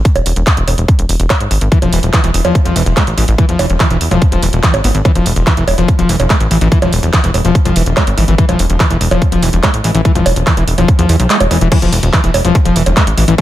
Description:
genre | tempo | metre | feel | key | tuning
psychedelic trance | 144 BPM | 4/4 | straight | unclear | A4 = 439 Hz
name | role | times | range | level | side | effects
electronic kick drum | drums | 0.1-13.4 s | none | -12 LUFS | equal | distortion, overdrive
techno drum kit | drums | 0.1-13.4 s | bongos, crash cymbal, handclaps, hi-hat | -17 LUFS | right 2 dB | overdrive
plucky analog bass | bass | 0.2-13.4 s | E1 to E2 | -13 LUFS | equal | none
screaming distorted acid line | riff | 1.7-13.4 s | E3 to B3 | -16 LUFS | left 2 dB | distortion, chorus, auto-pan, sidechain pumping, diffuse ambient delay
room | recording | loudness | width
light reverb, digital ambience | none | -9 LUFS | side -14 dB against mid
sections
0.0-11.7 A section; 11.7-13.4 B section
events
kick drops out 11.3-11.7; drop 11.7-13.4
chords
0.0 E5

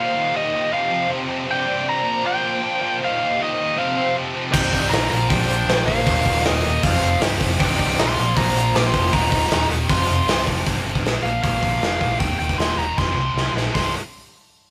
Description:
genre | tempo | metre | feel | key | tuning
hard rock | 157 BPM | 4/4 | straight | C minor | A4 = 440 Hz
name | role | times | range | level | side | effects
biting lead guitar | melody | 0.0-13.9 s | Eb5 to D6 | -25 LUFS | equal | overdrive
lush unison pad | sustained chords | 0.0-10.7 s | F3 to D5 | -32 LUFS | equal | chorus
heavy high-gain guitar | riff | 0.0-13.9 s | C2 to Bb3 | -28 LUFS | equal | distortion
octave-fuzz lead guitar | second line | 3.8-10.4 s | Bb3 to Bb4 | -32 LUFS | equal | none
scooped high-gain guitar | riff | 4.5-10.6 s | C2 to Bb3 | -33 LUFS | equal | none
overdriven fingered electric bass | bass | 4.5-13.9 s | C1 to C2 | -26 LUFS | equal | none
gated 80s drum kit | drums | 4.5-13.8 s | crash cymbal, hi-hat, kick drum, snare drum | -24 LUFS | equal | none
room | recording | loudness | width
moderate stone room reverb, RT60 1.4 s | rough rehearsal-room recording, tube saturation | -20 LUFS | mono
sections
0.0-10.7 A section; 10.7-13.8 B section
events
drum fill 10.5, 13.0-13.8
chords
0.0 Eb; 0.7 F5; 1.5 C5; 2.1 Bb5; 3.0 Eb; 3.8 F5; 4.5 C5; 5.1 Bb; 6.1 Eb; 6.8 F5; 7.6 Cm; 8.2 Bb5; 9.1 Eb; 9.9 F5; 10.7 C5; 11.2 Bb5; 12.2 Eb5; 13.0 F5; 13.8 C5

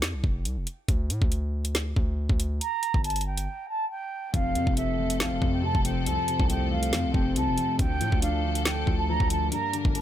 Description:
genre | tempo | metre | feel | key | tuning
hip hop, drill | 139 BPM | 4/4 | half-time | D minor | A4 = 437 Hz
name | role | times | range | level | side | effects
hard-hitting 808-style bass | bass | 0.0-10.0 s | F1 to A2 | -29 LUFS | equal | none
drill drum kit | drums | 0.0-10.0 s | hi-hat, kick drum, snare drum | -26 LUFS | equal | none
mellow concert flute | melody | 2.6-10.0 s | E5 to Bb5 | -30 LUFS | right 3 dB | ping-pong delay
dark grand piano | accompaniment | 4.3-10.0 s | F2 to D4 | -29 LUFS | left 3 dB | none
warm symphonic string section | sustained chords | 4.3-10.0 s | F3 to Bb4 | -35 LUFS | left 1 dB | none
room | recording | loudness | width
small room ambience | none | -24 LUFS | side -11 dB against mid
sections
0.0-10.0 A section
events
break 0.0-2.6, 3.5-4.3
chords
0.0 F5; 0.9 D5; 2.6 Gm; 4.3 F; 7.8 Dm

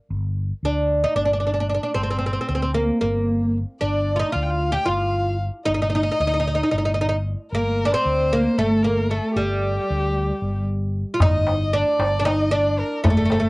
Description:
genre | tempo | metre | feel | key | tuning
Turkish makam ensemble | 227 BPM (eighths) | 7/8 | straight | G makam nihavent | A4 = 440 Hz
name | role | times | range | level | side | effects
mellow fretless electric bass | bass | 0.1-13.5 s | G1 to D2 | -24 LUFS | equal | none
oud | melody | 0.7-13.5 s | G3 to G4 | -21 LUFS | right 1 dB | none
dark violin | second line | 3.8-13.5 s | G4 to G5 | -27 LUFS | left 2 dB | cassette tape
darbuka | percussion | 11.2-13.4 s | none | -21 LUFS | left 1 dB | none
room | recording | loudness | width
moderate booth ambience, RT60 0.2 s | home recording on cassette | -19 LUFS | side -23 dB against mid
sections
0.0-11.2 A section; 11.2-13.5 B section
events
none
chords
none

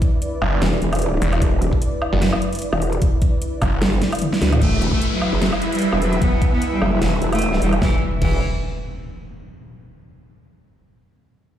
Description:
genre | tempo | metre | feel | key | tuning
heavy wobble dubstep | 150 BPM | 4/4 | swing 55% on 16ths, half-time | E minor | A4 = 437 Hz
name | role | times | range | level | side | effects
supersaw pad | sustained chords | 0.0-8.0 s | E4 to E5 | -26 LUFS | equal | sidechain pumping, low-pass filter
dubstep drum kit | drums | 0.0-8.3 s | crash cymbal, hi-hat, snare drum, toms, woodblock | -24 LUFS | equal | small room ambience
electronic kick drum | drums | 0.0-8.3 s | none | -18 LUFS | equal | overdrive, small room ambience
snarling distorted saw bass | bass | 0.4-3.8 s | E1 to F#1 | -20 LUFS | equal | distortion, overdrive
growl bass | bass | 0.6-8.4 s | E1 to D2 | -20 LUFS | equal | chorus, overdrive
bright cello | melody | 4.6-8.4 s | E3 to B3 | -23 LUFS | right 1 dB | digital delay
downlifter and impact | sound effects | 4.6-9.4 s | none | -28 LUFS | equal | none
room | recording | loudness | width
light reverb | played on a big sound system in a bare room, large studio reverb | -17 LUFS | side -10 dB against mid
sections
0.0-4.6 A section; 4.6-7.8 B section; 7.8-9.4 C section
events
drop 0.0-4.6; drum fill 4.0-4.6; band accent 4.4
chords
0.0 E5

